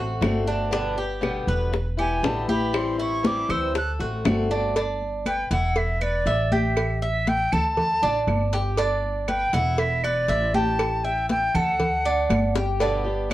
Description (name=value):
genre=latin, Cuban son and guajira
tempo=119 BPM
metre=4/4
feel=straight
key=G major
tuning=A4 = 440 Hz
part: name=picked old ladder-braced acoustic guitar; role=accompaniment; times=0.0-4.8, 12.8-13.3 s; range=B2 to G4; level=-28 LUFS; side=left 3 dB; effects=none
part: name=Cuban tres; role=arpeggios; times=0.0-13.3 s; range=D4 to E5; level=-28 LUFS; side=right 2 dB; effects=none
part: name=upright bass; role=bass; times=0.0-13.3 s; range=E1 to D2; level=-27 LUFS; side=equal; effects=none
part: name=bongos and cowbell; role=percussion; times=0.2-13.3 s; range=none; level=-28 LUFS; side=left 1 dB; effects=none
part: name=claves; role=percussion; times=0.2-13.3 s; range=none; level=-35 LUFS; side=right 3 dB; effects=none
part: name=congas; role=percussion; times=0.2-13.3 s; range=none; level=-28 LUFS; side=equal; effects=none
part: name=silver concert flute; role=melody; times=2.0-12.6 s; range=D5 to F#6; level=-25 LUFS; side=equal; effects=plate reverb
room=moderate studio reverb, RT60 0.5 s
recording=worn, warbling old tape, cassette tape, warbly pitch drift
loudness=-21 LUFS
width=side -15 dB against mid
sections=0.0-4.8 A section; 4.8-13.3 B section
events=flute solo 0.0-4.8; drum fill 12.6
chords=0.0 D7; 0.7 G; 1.7 Em7; 2.7 Am7; 3.7 D7; 4.8 G; 5.8 Em7; 6.8 A5; 7.8 D5; 8.8 G; 9.8 Em7; 10.8 A5; 11.8 D; 12.8 G